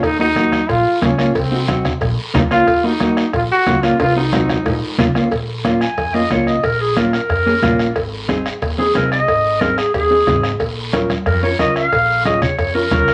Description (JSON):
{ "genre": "latin, cumbia", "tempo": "182 BPM", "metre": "4/4", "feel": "straight", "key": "Bb minor", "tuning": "A4 = 440 Hz", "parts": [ { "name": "bright trombone", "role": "second line", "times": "0.0-5.1 s", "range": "C4 to Gb4", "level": "-19 LUFS", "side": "equal", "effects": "none" }, { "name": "upright bass", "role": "bass", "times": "0.0-13.1 s", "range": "Ab1 to F2", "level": "-26 LUFS", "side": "equal", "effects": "none" }, { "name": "bombo", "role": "percussion", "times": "0.0-13.1 s", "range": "none", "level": "-28 LUFS", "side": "equal", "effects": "none" }, { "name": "cowbell and timbales", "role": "percussion", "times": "0.0-13.1 s", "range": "none", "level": "-28 LUFS", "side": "equal", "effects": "none" }, { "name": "guiro", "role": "percussion", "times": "0.0-13.1 s", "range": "none", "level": "-31 LUFS", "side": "equal", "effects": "none" }, { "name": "mellow electric guitar", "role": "accompaniment", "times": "0.2-13.1 s", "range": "Bb3 to Bb4", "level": "-21 LUFS", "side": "equal", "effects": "none" }, { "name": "congas", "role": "percussion", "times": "0.4-13.1 s", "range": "none", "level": "-25 LUFS", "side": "equal", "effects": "none" }, { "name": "warm clarinet", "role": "melody", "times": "5.8-13.1 s", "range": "Ab4 to Ab5", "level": "-19 LUFS", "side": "equal", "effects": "none" } ], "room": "wet studio ambience, RT60 0.5 s", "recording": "vinyl crackle, nothing above 10.4 kHz", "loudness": "-16 LUFS", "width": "mono", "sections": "0.0-5.3 A section; 5.3-13.1 B section", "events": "trombone solo 0.0-5.3; drum fill 4.0-5.3; clarinet solo 5.3-13.1", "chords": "0.0 Ebm; 0.7 Bbm; 1.4 Cdim; 2.0 Bbm; 2.7 Ebm; 3.3 Bbm; 4.0 Cdim; 4.7 Bbm; 8.0 Ab; 10.6 Bbm", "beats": "| 0.03 0.36 0.69 1.02 | 1.35 1.69 2.02 2.35 | 2.67 3.00 3.33 3.67 | 4.00 4.33 4.66 4.99 | 5.32 5.65 5.98 6.31 | 6.64 6.97 7.30 7.63 | 7.96 8.29 8.62 8.95 | 9.28 9.61 9.94 10.27 | 10.60 10.93 11.26 11.59 | 11.92 12.25 12.58 12.91" }